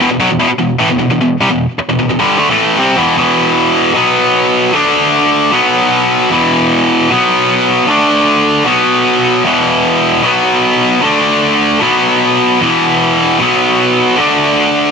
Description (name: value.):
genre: rock.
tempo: 152 BPM.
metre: 4/4.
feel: straight.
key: unclear.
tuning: A4 = 440 Hz.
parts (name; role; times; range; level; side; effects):
tight distorted guitar; solo; 0.0-14.9 s; E2 to D4; -9 LUFS; equal; distortion, digital delay.
room: moderate studio reverb, RT60 0.6 s.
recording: none.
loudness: -9 LUFS.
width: side -5 dB against mid.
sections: 0.0-3.2 A section; 3.2-14.9 B section.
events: none.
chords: 0.0 Em; 3.2 E5; 4.0 B5; 4.7 D5; 5.5 B5; 6.3 E5; 7.1 B5; 7.9 D5; 8.7 B5; 9.5 E5; 10.2 B5; 11.0 D5; 11.8 B5; 12.6 E5; 13.4 B5; 14.2 D5.